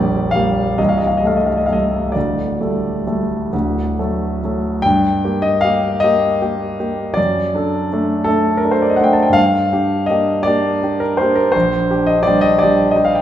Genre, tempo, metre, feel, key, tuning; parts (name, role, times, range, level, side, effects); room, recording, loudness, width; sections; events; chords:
classical, romantic nocturne for solo piano; 43-57 BPM (dotted quarters); 12/8; rubato; G minor; A4 = 440 Hz
warm grand piano; solo; 0.0-13.2 s; Bb0 to A5; -14 LUFS; equal
wet recital hall reverb, RT60 1.7 s; recorded in a church or concert hall; -14 LUFS; side -11 dB against mid
0.0-4.8 A section; 4.8-13.2 B section
0.0 Gm/Bb; 0.8 Cm6; 2.1 Dsus4; 3.5 D; 4.8 Gm; 7.2 D/F#; 9.4 Gm; 11.5 Gm/Bb